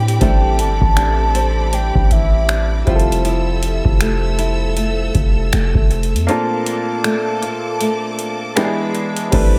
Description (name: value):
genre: contemporary R&B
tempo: 79 BPM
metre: 4/4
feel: swing 58% on 16ths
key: A minor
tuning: A4 = 439 Hz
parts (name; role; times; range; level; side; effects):
- soft octave-layered synth lead; melody; 0.0-2.9 s; E5 to A5; -24 LUFS; equal; chorus, phaser, analog delay
- clear grand piano; accompaniment; 0.0-9.6 s; E3 to B4; -24 LUFS; equal; none
- bright studio string section; sustained chords; 0.0-9.6 s; C4 to E6; -30 LUFS; equal; none
- flamenco guitar; arpeggios; 0.0-9.6 s; Bb2 to C5; -26 LUFS; equal; analog delay
- warm 808-style bass; bass; 0.0-9.6 s; F1 to A2; -20 LUFS; equal; none
- booming analog drum machine; drums; 0.1-9.5 s; crash cymbal, finger snaps, hi-hat, kick drum; -21 LUFS; equal; none
room: light reverb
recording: echo-heavy mix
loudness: -17 LUFS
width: mono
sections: 0.0-9.3 A section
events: kick muted 6.3-9.3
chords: 0.0 Am11; 2.9 Fmaj7; 6.3 Bbmaj7; 8.6 E7